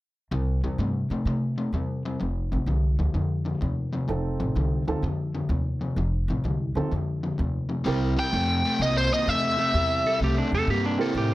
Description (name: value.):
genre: electric blues shuffle.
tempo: 127 BPM.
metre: 4/4.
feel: swing 67% on 8ths.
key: C mixolydian.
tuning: A4 = 440 Hz.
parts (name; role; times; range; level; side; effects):
overdriven semi-hollow guitar; riff; 0.3-11.3 s; F2 to Bb3; -28 LUFS; left 2 dB; none.
upright bass; bass; 0.3-11.3 s; F1 to C3; -27 LUFS; equal; none.
dark baby grand piano; accompaniment; 4.1-8.1, 11.0-11.3 s; C4 to Bb4; -30 LUFS; right 4 dB; plate reverb.
biting lead guitar; melody; 8.2-10.2 s; C5 to G5; -24 LUFS; equal; overdrive, plate reverb.
clean lap steel guitar; second line; 10.1-11.3 s; D4 to A4; -28 LUFS; right 4 dB; plate reverb.
room: light reverb.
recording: none.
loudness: -23 LUFS.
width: side -17 dB against mid.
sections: 0.3-7.9 A section; 7.9-11.3 B section.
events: none.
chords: 0.3 C; 2.2 F7; 7.9 C7.